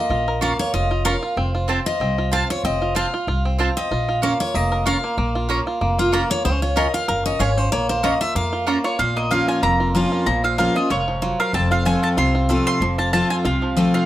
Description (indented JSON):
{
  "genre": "bluegrass",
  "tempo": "189 BPM",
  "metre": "4/4",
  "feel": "swing 55% on 8ths",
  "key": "Bb minor",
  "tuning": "A4 = 442 Hz",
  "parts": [
    { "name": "picked steel-string acoustic guitar", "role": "accompaniment", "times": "0.0-14.1 s", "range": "F2 to F5", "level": "-22 LUFS", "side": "left 2 dB", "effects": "none" },
    { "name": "bluegrass banjo", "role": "arpeggios", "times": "0.0-14.1 s", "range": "F3 to Bb4", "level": "-24 LUFS", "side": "right 2 dB", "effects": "none" },
    { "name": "upright bass", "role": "bass", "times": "0.1-13.9 s", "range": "F1 to F2", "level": "-24 LUFS", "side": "equal", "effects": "none" },
    { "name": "mandolin", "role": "stabs", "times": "0.4-8.8 s", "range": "C4 to Bb5", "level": "-23 LUFS", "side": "right 3 dB", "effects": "none" },
    { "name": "mandolin", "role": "melody", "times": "8.8-14.1 s", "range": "Db5 to C6", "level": "-22 LUFS", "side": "right 1 dB", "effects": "plate reverb" }
  ],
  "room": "light reverb",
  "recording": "none",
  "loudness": "-18 LUFS",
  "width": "side -14 dB against mid",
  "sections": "0.0-9.0 A section; 9.0-14.1 B section",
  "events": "steel-string acoustic guitar solo 0.0-9.0",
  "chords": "0.0 Bbm; 1.4 F; 3.9 Bbm; 6.5 Db; 7.7 Bbm; 11.5 F",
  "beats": "| 0.11 0.42 0.74 1.06 | 1.38 1.69 2.01 2.33 | 2.65 2.96 3.28 3.60 | 3.91 4.23 4.55 4.87 | 5.18 5.50 5.82 6.13 | 6.45 6.77 7.09 7.40 | 7.72 8.04 8.36 8.67 | 8.99 9.31 9.63 9.95 | 10.26 10.58 10.90 11.22 | 11.54 11.86 12.18 12.49 | 12.81 13.13 13.45 13.77"
}